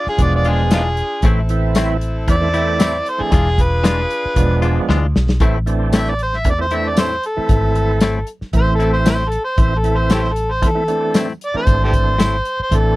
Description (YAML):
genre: straight-eighth soul blues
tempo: 115 BPM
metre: 4/4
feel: straight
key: A harmonic minor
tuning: A4 = 437 Hz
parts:
  - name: overdriven harmonica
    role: melody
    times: 0.0-13.0 s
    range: D#4 to E5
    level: -19 LUFS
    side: equal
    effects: none
  - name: warm horn section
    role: sustained chords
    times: 0.0-5.4 s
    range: C4 to A4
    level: -29 LUFS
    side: left 1 dB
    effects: none
  - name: vintage muted fingered electric bass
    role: bass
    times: 0.1-13.0 s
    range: E1 to E2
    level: -18 LUFS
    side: equal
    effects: none
  - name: warm soul drum kit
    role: drums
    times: 0.1-12.8 s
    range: hi-hat, kick drum, snare drum, tambourine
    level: -17 LUFS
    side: equal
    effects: none
  - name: tonewheel organ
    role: accompaniment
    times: 0.2-13.0 s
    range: E3 to E4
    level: -22 LUFS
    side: right 5 dB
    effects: slow rotary speaker, overdrive
  - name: direct-recorded clean electric guitar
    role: stabs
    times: 0.5-12.4 s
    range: A2 to F4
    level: -22 LUFS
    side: left 4 dB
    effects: none
room: little or no reverb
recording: dry, close 1970s-style studio recording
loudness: -14 LUFS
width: side -18 dB against mid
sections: 0.0-5.4 A section; 5.4-13.0 A section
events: harmonica solo 0.0-13.0; drum fill 4.9-5.4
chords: 0.0 E7b9; 1.2 Am; 3.3 E7b9; 5.4 Am